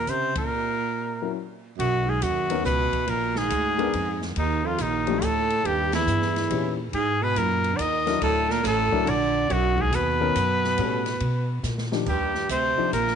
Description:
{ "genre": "jazz, small-group swing and bop", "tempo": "140 BPM", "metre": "3/4", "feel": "swing 66% on 8ths", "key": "unclear", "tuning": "A4 = 440 Hz", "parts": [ { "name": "clear trumpet", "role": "melody", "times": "0.0-13.2 s", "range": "D#4 to D#5", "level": "-25 LUFS", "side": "left 2 dB", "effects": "none" }, { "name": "bright baritone saxophone", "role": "second line", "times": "0.0-13.2 s", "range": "D#2 to D#3", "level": "-28 LUFS", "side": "right 12 dB", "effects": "tape echo" }, { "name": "upright bass", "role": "bass", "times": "0.0-13.2 s", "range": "A1 to Db3", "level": "-28 LUFS", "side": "left 1 dB", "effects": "none" }, { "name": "open jazz drum kit", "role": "drums", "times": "0.1-13.2 s", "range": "crash cymbal, hi-hat, kick drum, ride cymbal, snare drum", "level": "-35 LUFS", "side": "left 1 dB", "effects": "none" }, { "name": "dark baby grand piano", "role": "accompaniment", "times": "1.2-12.9 s", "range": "D#3 to Bb4", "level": "-28 LUFS", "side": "left 14 dB", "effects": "none" } ], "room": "light reverb, studio reverb", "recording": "1960s-style stereo with parts hard left and right, nothing above 10.4 kHz", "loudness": "-22 LUFS", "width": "side -7 dB against mid", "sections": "0.0-1.8 A section; 1.8-12.1 B section; 12.1-13.2 A section", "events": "band accent 0.3, 5.9; break 0.5-1.8; drum fill 11.6-12.1", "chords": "0.0 N.C.; 0.5 Gb7; 1.8 Badd9; 3.1 A#7; 4.4 D#maj7sus2; 5.6 D#7b9; 6.9 G#sus2; 8.2 F#7alt; 9.5 B; 10.8 A9; 11.6 D#maj9", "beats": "0.08 | 0.51 0.94 1.36 | 1.79 2.22 2.65 | 3.08 3.50 3.93 | 4.36 4.79 5.21 | 5.64 6.07 6.50 | 6.92 7.35 7.78 | 8.21 8.64 9.06 | 9.49 9.92 10.35 | 10.78 11.21 11.63 | 12.06 12.49 12.92" }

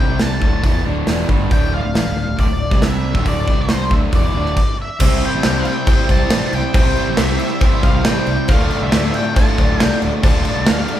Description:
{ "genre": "classic rock", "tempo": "138 BPM", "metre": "4/4", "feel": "straight", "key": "unclear", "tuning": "A4 = 440 Hz", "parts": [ { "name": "octave-fuzz lead guitar", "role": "melody", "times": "0.0-11.0 s", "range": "C5 to A5", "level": "-24 LUFS", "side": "left 1 dB", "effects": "distortion" }, { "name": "picked old ladder-braced acoustic guitar", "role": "accompaniment", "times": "0.0-11.0 s", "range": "C3 to C5", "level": "-29 LUFS", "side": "left 3 dB", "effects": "none" }, { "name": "raw garage guitar", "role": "riff", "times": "0.0-11.0 s", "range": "D2 to C5", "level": "-23 LUFS", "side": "right 6 dB", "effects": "overdrive" }, { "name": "sludgy distorted guitar", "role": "riff", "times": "0.0-11.0 s", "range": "D2 to C5", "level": "-25 LUFS", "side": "left 5 dB", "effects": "overdrive" }, { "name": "fingered electric bass", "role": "bass", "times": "0.0-10.8 s", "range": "D1 to D2", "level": "-22 LUFS", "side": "equal", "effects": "none" }, { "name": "gated 80s drum kit", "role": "drums", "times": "0.2-11.0 s", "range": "crash cymbal, hi-hat, kick drum, snare drum", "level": "-16 LUFS", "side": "equal", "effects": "none" }, { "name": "tonewheel organ", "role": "sustained chords", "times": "5.0-11.0 s", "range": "C4 to D5", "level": "-33 LUFS", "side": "right 1 dB", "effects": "none" }, { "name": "crunchy overdriven guitar", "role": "riff", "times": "5.0-11.0 s", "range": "D2 to C4", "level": "-27 LUFS", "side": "right 1 dB", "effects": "none" }, { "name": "cowbell", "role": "percussion", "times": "5.0-10.8 s", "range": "none", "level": "-32 LUFS", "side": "left 4 dB", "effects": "none" } ], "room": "moderate large studio reverb, RT60 1.1 s", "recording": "band playing live in one room", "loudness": "-14 LUFS", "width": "side -11 dB against mid", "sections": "0.0-5.0 A section; 5.0-11.0 B section", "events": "none", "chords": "0.0 C5; 0.4 Dm; 2.7 C5; 3.2 Dm; 3.5 C5; 3.9 Dm; 5.0 C; 8.5 Dm", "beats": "0.20 0.64 1.08 | 1.52 1.95 2.39 2.83 | 3.27 3.71 4.14 4.58 | 5.01 5.45 5.89 6.32 | 6.76 7.19 7.63 8.06 | 8.50 8.93 9.37 9.80 | 10.23 10.67" }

